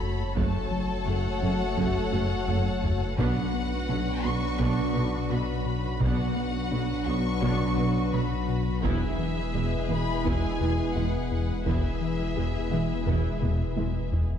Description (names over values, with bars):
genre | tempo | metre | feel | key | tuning
cinematic, hybrid orchestral and electronic film score | 85 BPM | 4/4 | straight | unclear | A4 = 438 Hz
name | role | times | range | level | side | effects
rich studio violin section | melody | 0.0-14.1 s | E5 to Db6 | -36 LUFS | left 2 dB | none
rich studio violin section | second line | 0.0-14.2 s | F#4 to Db5 | -36 LUFS | left 3 dB | none
mellow French horn section | sustained chords | 0.0-14.1 s | F#3 to Gb4 | -35 LUFS | left 2 dB | none
warbly tape-like pad | sustained chords | 0.0-14.4 s | Gb3 to Db5 | -36 LUFS | equal | chorus, built-in reverb, phaser
rubbery square bass | riff | 0.0-14.3 s | E2 to B3 | -31 LUFS | left 2 dB | none
wide detuned saw bass | bass | 0.0-14.4 s | E1 to B1 | -33 LUFS | equal | chorus
warm symphonic viola section | accompaniment | 0.4-13.9 s | F#3 to Gb4 | -37 LUFS | right 2 dB | none
resonant blip pluck | arpeggios | 0.4-14.0 s | E3 to B4 | -38 LUFS | right 2 dB | none
mellow tuba | bass | 0.4-13.9 s | E1 to B1 | -36 LUFS | right 3 dB | none
rich symphonic cello section | bass | 0.4-13.9 s | E2 to B2 | -37 LUFS | right 3 dB | none
warm symphonic double bass section | bass | 0.4-13.9 s | E1 to B1 | -35 LUFS | right 4 dB | none
taiko ensemble | drums | 0.4-14.4 s | none | -33 LUFS | equal | none
room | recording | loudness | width
moderate scoring stage reverb, RT60 1.6 s | dark, warm production | -24 LUFS | side -8 dB against mid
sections
0.0-14.4 A section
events
drum fill 2.1-3.2, 13.4-14.4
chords
0.0 Gbm; 3.2 Bm; 8.8 E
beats
| 0.37 1.07 1.78 2.48 | 3.19 3.90 4.60 5.31 | 6.01 6.72 7.43 8.13 | 8.84 9.54 10.25 10.96 | 11.66 12.37 13.07 13.78